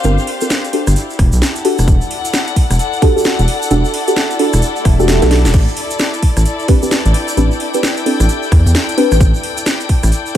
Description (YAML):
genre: UK garage, two-step garage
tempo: 131 BPM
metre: 4/4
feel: swing 62% on 16ths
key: A dorian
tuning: A4 = 440 Hz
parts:
  - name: deep mellow chord stab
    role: stabs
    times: 0.0-10.4 s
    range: C4 to B4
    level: -17 LUFS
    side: equal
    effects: chorus, vintage 12-bit sampler grit, dub echo
  - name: rubbery square bass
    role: bass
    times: 0.0-10.1 s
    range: D1 to E2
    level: -12 LUFS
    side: equal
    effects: none
  - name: house drum kit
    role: drums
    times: 0.0-10.4 s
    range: crash cymbal, hi-hat, rim click, snare drum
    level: -19 LUFS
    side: equal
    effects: none
  - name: egg shaker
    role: percussion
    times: 0.0-10.3 s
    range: none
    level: -26 LUFS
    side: right 3 dB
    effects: none
  - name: warm chamber string section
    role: texture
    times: 0.0-10.4 s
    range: D4 to G5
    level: -21 LUFS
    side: left 3 dB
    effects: sidechain pumping
  - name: electronic kick drum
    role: drums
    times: 1.2-10.4 s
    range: none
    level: -12 LUFS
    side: equal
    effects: none
  - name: swell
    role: sound effects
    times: 4.8-5.5 s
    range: none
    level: -27 LUFS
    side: left 1 dB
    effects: none
room: light reverb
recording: none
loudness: -11 LUFS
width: side -11 dB against mid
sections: 0.0-10.4 A section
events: filter sweep on synth stab 0.0-10.4; swell 4.8-5.5; drum fill 5.2-5.5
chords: 0.0 Gm11; 1.0 Em11; 5.5 Am11